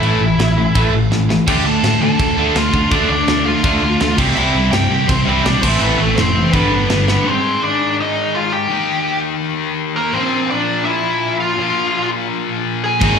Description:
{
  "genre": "punk rock",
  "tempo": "166 BPM",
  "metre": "4/4",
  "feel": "straight",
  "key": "unclear",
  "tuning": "A4 = 439 Hz",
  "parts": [
    { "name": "nasal lead guitar with a parked wah", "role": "melody", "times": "0.0-13.2 s", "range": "A3 to A5", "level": "-19 LUFS", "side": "equal", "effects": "overdrive, ping-pong delay" },
    { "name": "distorted electric guitar", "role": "riff", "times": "0.0-13.2 s", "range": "G2 to Eb4", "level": "-20 LUFS", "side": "left 8 dB", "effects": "distortion, slapback echo" },
    { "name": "raw garage guitar", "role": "riff", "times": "0.0-7.2, 13.0-13.2 s", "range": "G2 to D4", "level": "-20 LUFS", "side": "right 10 dB", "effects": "overdrive" },
    { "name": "overdriven picked electric bass", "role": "bass", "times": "0.0-7.1, 13.0-13.1 s", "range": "F1 to D3", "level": "-19 LUFS", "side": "equal", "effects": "none" },
    { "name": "tight metal drum kit", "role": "drums", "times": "0.0-7.2, 13.0-13.1 s", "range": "crash cymbal, kick drum, snare drum", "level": "-21 LUFS", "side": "right 1 dB", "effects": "none" },
    { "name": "heavy high-gain guitar", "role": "riff", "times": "1.5-7.3, 13.0-13.2 s", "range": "G2 to F4", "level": "-20 LUFS", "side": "left 1 dB", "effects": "distortion, slapback echo" }
  ],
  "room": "studio reverb",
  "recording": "live gig heard through the venue's PA, club reverb",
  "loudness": "-13 LUFS",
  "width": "side -6 dB against mid",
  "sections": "0.0-7.3 A section; 7.3-13.2 B section",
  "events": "half time 0.0-7.3; drum fill 1.1-1.5, 7.1",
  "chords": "0.0 A5; 1.5 Dm; 4.2 C; 5.6 Am; 6.5 G; 7.3 Ab; 8.7 Eb; 10.1 Bb"
}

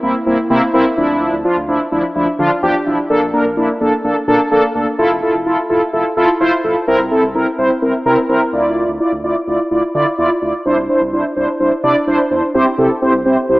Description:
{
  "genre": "synth-pop",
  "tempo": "127 BPM",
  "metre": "4/4",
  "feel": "straight",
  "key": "unclear",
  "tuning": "A4 = 440 Hz",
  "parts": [
    { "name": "mellow synth brass", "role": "accompaniment", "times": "0.0-13.6 s", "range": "F3 to D5", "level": "-13 LUFS", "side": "equal", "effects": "chorus" },
    { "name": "round analog bass", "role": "bass", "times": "0.0-13.6 s", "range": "E1 to D3", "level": "-27 LUFS", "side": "equal", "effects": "none" }
  ],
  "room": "wet lush hall reverb, RT60 2.4 s",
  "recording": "small speaker sound",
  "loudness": "-13 LUFS",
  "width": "side -20 dB against mid",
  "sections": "0.0-12.5 A section; 12.5-13.6 B section",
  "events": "none",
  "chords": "0.0 C7; 1.0 Dmadd9; 3.1 Bbmaj7; 5.0 Fmaj7; 6.9 C7; 8.5 Dmadd9; 10.7 Cadd9; 12.5 C"
}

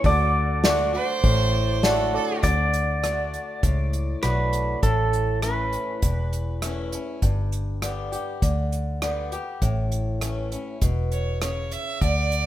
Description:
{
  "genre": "honky-tonk and classic country",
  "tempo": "100 BPM",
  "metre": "4/4",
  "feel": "straight",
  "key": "D major",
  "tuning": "A4 = 440 Hz",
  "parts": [
    { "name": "pedal steel guitar", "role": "melody", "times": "0.0-6.9 s", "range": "A4 to D5", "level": "-27 LUFS", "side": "right 1 dB", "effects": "none" },
    { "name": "bright upright piano", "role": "accompaniment", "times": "0.0-2.4 s", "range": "F#4 to D5", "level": "-33 LUFS", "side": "right 3 dB", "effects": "none" },
    { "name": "picked swing-style acoustic guitar", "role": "accompaniment", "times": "0.0-12.5 s", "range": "E2 to G4", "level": "-28 LUFS", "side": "left 1 dB", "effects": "none" },
    { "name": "vintage muted fingered electric bass", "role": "bass", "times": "0.0-12.5 s", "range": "E1 to D2", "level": "-25 LUFS", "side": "equal", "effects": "none" },
    { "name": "unplugged drum kit", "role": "drums", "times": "0.0-12.5 s", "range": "hi-hat, kick drum, rim click, snare drum", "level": "-25 LUFS", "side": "equal", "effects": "none" },
    { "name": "clear fiddle", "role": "second line", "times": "0.9-2.4, 11.1-12.5 s", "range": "A4 to E5", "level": "-27 LUFS", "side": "right 6 dB", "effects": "none" }
  ],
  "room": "light reverb",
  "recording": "minimal, uncompressed stereo recording",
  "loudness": "-22 LUFS",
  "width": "side -13 dB against mid",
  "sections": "0.0-2.4 A section; 2.4-12.0 B section",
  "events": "none",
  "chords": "0.0 D; 4.8 A; 7.2 G; 9.6 A"
}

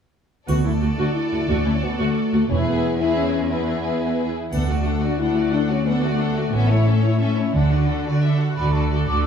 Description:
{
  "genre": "cinematic, heroic adventure film score",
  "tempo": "119 BPM (dotted quarters)",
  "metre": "6/8",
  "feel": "straight",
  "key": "D lydian",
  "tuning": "A4 = 442 Hz",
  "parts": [
    { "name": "warm symphonic violin section", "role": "melody", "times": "0.5-9.3 s", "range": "B4 to F#5", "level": "-34 LUFS", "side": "left 3 dB", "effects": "none" },
    { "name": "rich symphonic violin section", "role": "second line", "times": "0.5-9.2 s", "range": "F#4 to C#5", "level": "-31 LUFS", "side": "right 2 dB", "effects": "none" },
    { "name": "warm studio viola section", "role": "accompaniment", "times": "0.5-9.3 s", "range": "C#4 to F#4", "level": "-27 LUFS", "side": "equal", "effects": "none" },
    { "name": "mellow French horn section", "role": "sustained chords", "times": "0.5-8.1 s", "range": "A3 to E4", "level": "-24 LUFS", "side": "left 5 dB", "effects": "none" },
    { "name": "rich studio cello section", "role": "bass", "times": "0.5-9.3 s", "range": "D2 to D3", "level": "-22 LUFS", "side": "equal", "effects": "none" },
    { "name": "rich symphonic double bass section", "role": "bass", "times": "0.5-9.3 s", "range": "E1 to D2", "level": "-24 LUFS", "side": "right 3 dB", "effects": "none" },
    { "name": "triangle", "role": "percussion", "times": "0.5-1.1, 4.5-5.2 s", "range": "none", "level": "-45 LUFS", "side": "left 3 dB", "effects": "none" },
    { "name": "mellow hollow concert flute", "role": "second line", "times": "8.6-9.3 s", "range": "A5 to E6", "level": "-26 LUFS", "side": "right 1 dB", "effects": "none" }
  ],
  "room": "light reverb",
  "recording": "studio ambience",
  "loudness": "-18 LUFS",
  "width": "side -7 dB against mid",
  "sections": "0.5-8.6 A section",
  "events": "none",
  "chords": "0.5 D; 2.5 E; 4.5 D; 6.5 A; 7.5 D"
}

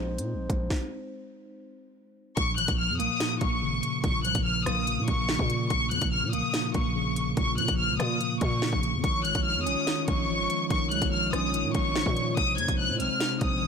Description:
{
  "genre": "hip hop, drill",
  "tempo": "144 BPM",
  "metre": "4/4",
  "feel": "half-time",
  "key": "Bb minor",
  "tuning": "A4 = 440 Hz",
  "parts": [
    { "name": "glass harmonica", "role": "sustained chords", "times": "0.0-0.7, 9.0-13.7 s", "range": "Ab3 to Db5", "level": "-36 LUFS", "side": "right 2 dB", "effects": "none" },
    { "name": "growling 808-style bass", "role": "bass", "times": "0.0-13.7 s", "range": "Ab1 to Bb2", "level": "-32 LUFS", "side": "equal", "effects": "none" },
    { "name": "drill drum kit", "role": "drums", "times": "0.2-13.5 s", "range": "hi-hat, kick drum, rim click, snare drum", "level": "-30 LUFS", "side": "equal", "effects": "none" },
    { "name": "warm symphonic violin section", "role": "melody", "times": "2.4-13.7 s", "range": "Db6 to Ab6", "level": "-28 LUFS", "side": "left 3 dB", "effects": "none" },
    { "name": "mellow tine electric piano", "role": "accompaniment", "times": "2.4-13.7 s", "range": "Bb2 to Db4", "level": "-31 LUFS", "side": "equal", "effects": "medium stereo tremolo" }
  ],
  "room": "little or no reverb",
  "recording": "blown-out, overdriven recording, overdrive",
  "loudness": "-24 LUFS",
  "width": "side -6 dB against mid",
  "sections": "0.0-2.4 A section; 2.4-13.7 B section",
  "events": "stop 0.7-2.4",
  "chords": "0.0 Ab/Bb; 2.4 Bbm; 9.0 Dbadd9; 12.4 Ab/Bb"
}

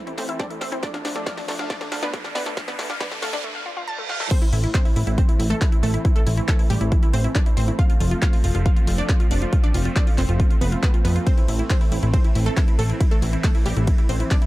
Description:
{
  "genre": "uplifting trance",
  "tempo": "138 BPM",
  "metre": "4/4",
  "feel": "straight",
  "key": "A minor",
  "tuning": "A4 = 441 Hz",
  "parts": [
    { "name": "wide unison pluck", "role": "melody", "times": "0.0-14.5 s", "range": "G3 to F5", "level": "-29 LUFS", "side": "right 1 dB", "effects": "sidechain pumping, digital delay" },
    { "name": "filtered supersaw swell", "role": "sustained chords", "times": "0.0-14.5 s", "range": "E3 to D4", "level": "-32 LUFS", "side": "right 1 dB", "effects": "sidechain pumping" },
    { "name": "riser and reverse cymbal", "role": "sound effects", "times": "0.1-4.3 s", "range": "none", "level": "-32 LUFS", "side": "right 3 dB", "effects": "none" },
    { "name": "analog pluck", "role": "arpeggios", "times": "0.1-4.2 s", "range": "A3 to A5", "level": "-32 LUFS", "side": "left 3 dB", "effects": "chorus, sidechain pumping, digital delay" },
    { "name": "punchy analog drum machine", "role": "drums", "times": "0.1-14.5 s", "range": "crash cymbal, handclaps, hi-hat, ride cymbal, snare drum", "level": "-32 LUFS", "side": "left 1 dB", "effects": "overdrive, high-pass filter on snare, high-pass filter on hats, high-pass filter on cymbals" },
    { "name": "plucky analog bass", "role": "bass", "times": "0.2-14.2 s", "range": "F1 to F2", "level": "-22 LUFS", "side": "equal", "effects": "sidechain pumping, high-pass filter" },
    { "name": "electronic kick drum", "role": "drums", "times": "0.4-14.4 s", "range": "none", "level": "-19 LUFS", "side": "equal", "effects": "overdrive" }
  ],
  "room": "little or no reverb",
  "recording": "dark, warm production, high-pass filter",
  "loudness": "-18 LUFS",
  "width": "side -18 dB against mid",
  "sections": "0.0-4.3 A section; 4.3-14.5 B section",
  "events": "build-up 0.0-4.3; drum fill 0.0-3.4, 4.1; filter sweep on synth arpeggio sound 0.0-4.3; filter sweep 0.0-4.3; riser 0.1-3.4; reverse cymbal 3.4-4.3; drop 4.3-14.5",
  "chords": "0.0 Am; 0.8 Dm; 4.3 Am; 7.8 F; 11.3 Am"
}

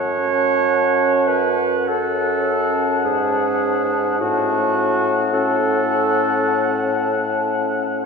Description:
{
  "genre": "classical, slow romantic movement for wind quintet",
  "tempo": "51-57 BPM",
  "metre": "4/4",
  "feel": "rubato",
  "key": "F# minor",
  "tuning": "A4 = 435 Hz",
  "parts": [
    { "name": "mellow hollow silver concert flute", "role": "melody", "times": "0.0-8.1 s", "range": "A5", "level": "-25 LUFS", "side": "left 5 dB", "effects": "none" },
    { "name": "mellow oboe", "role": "second line", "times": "0.0-8.1 s", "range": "F#5", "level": "-26 LUFS", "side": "left 2 dB", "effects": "none" },
    { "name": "clear French horn", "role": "accompaniment", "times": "0.0-8.1 s", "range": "C#4", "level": "-26 LUFS", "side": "left 2 dB", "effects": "none" },
    { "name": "clear clarinet", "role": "accompaniment", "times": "0.0-7.5 s", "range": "F#4 to C#5", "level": "-21 LUFS", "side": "right 4 dB", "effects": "none" },
    { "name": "mellow bassoon", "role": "bass", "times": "0.0-8.1 s", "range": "F#2 to A2", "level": "-22 LUFS", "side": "equal", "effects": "none" }
  ],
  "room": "wet cathedral reverb, RT60 4.3 s",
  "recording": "nothing above 7.9 kHz",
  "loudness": "-16 LUFS",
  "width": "side -4 dB against mid",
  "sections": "0.0-8.1 A section",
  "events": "none",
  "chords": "0.0 F#m; 4.2 F#m/A"
}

